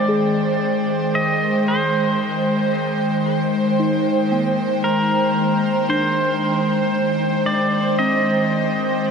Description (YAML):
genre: ambient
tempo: 57 BPM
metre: 4/4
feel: straight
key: Ab lydian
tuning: A4 = 445 Hz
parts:
  - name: pedal steel guitar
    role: melody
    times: 0.0-9.1 s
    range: Bb4 to Eb5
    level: -23 LUFS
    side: equal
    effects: ping-pong delay
  - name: airy breathy pad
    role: sustained chords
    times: 0.0-9.1 s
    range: Eb3 to G5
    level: -19 LUFS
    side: equal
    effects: chorus
  - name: muted felt-like synth keys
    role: arpeggios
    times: 0.0-9.1 s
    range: Bb3 to G5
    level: -27 LUFS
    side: equal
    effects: chorus, ping-pong delay
  - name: drifting glass-harmonics texture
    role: texture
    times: 0.0-9.1 s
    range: C5 to C6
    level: -32 LUFS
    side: left 1 dB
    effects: chorus, built-in reverb
room: wet huge ambient reverb, RT60 8.6 s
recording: dark, warm production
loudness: -17 LUFS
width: side -6 dB against mid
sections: 0.0-9.1 A section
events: fade-in on synth texture 0.0-9.1; fade-out on synth keys 0.0-9.1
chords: 0.0 Abmaj7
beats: 0.62 1.68 2.74 | 3.79 4.84 5.89 6.94 | 8.00 9.06